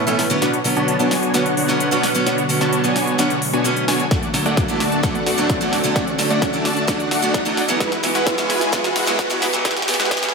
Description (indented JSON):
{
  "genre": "EDM, festival progressive house",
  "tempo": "130 BPM",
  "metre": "4/4",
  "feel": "straight",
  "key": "unclear",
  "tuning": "A4 = 440 Hz",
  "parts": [
    { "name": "picked steel-string acoustic guitar", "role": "accompaniment", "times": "0.0-10.3 s", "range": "D3 to E4", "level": "-21 LUFS", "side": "right 2 dB", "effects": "sidechain pumping, tape echo" },
    { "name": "lush unison pad", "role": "sustained chords", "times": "0.0-10.3 s", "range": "D2 to C#5", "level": "-27 LUFS", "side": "left 1 dB", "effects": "chorus, phaser, sidechain pumping" },
    { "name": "dense compressed supersaw", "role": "riff", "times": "0.0-10.3 s", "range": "G#3 to A5", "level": "-21 LUFS", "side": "equal", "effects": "sidechain pumping, low-pass filter, tape echo" },
    { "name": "riser", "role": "sound effects", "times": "1.6-10.3 s", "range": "none", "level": "-28 LUFS", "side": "equal", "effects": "none" },
    { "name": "big-room dance drum kit", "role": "drums", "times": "0.1-10.3 s", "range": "hi-hat, snare drum", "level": "-24 LUFS", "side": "left 1 dB", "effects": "overdrive, high-pass filter on hats, studio reverb, high-pass filter on snare" },
    { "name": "electronic kick drum", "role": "drums", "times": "4.1-10.2 s", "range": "none", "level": "-23 LUFS", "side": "equal", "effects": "overdrive, studio reverb" }
  ],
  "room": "moderate lush hall reverb, RT60 1.8 s, digital ambience",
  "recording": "high-pass filter",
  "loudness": "-16 LUFS",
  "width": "side -4 dB against mid",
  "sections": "0.0-10.3 A section",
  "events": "build-up 0.0-10.3; drum fill 0.0-10.3; filter sweep on supersaw synth 0.0-10.3; riser 1.6-10.3",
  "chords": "0.4 Bmadd9; 4.1 D; 7.8 Eadd9",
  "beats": "| 0.42 0.88 1.34 1.80 | 2.27 2.73 3.19 3.65 | 4.11 4.57 5.04 5.50 | 5.96 6.42 6.88 7.34 | 7.80 8.27 8.73 9.19 | 9.65 10.11"
}